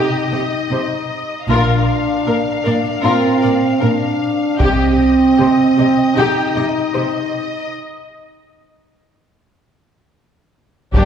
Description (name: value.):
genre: cinematic, epic orchestral film score.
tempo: 77 BPM.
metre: 4/4.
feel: straight.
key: C minor.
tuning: A4 = 442 Hz.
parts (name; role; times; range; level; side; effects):
warm symphonic violin section; melody; 0.0-11.1 s; G4 to F5; -24 LUFS; left 4 dB; none.
dark symphonic violin section; second line; 0.0-11.1 s; D4 to Eb5; -23 LUFS; left 3 dB; none.
rich symphonic viola section; accompaniment; 0.0-11.1 s; G4 to Bb4; -24 LUFS; right 1 dB; none.
mellow French horn section; sustained chords; 0.0-11.1 s; Bb3 to Eb4; -16 LUFS; right 1 dB; none.
warm symphonic cello section; bass; 0.3-11.0 s; G2 to C3; -22 LUFS; right 1 dB; none.
rich symphonic double bass section; bass; 1.5-5.0, 10.9-11.0 s; G1 to C2; -20 LUFS; equal; none.
taiko ensemble; drums; 4.6-6.1, 10.9-11.1 s; none; -18 LUFS; left 1 dB; none.
room: wet scoring stage reverb, RT60 2.0 s.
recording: heard from further back in the room.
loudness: -13 LUFS.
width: side -8 dB against mid.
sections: 0.0-10.9 A section.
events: break 7.7-10.9.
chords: 0.0 Cm (rootless); 1.5 Bb; 4.6 Cm; 7.7 N.C..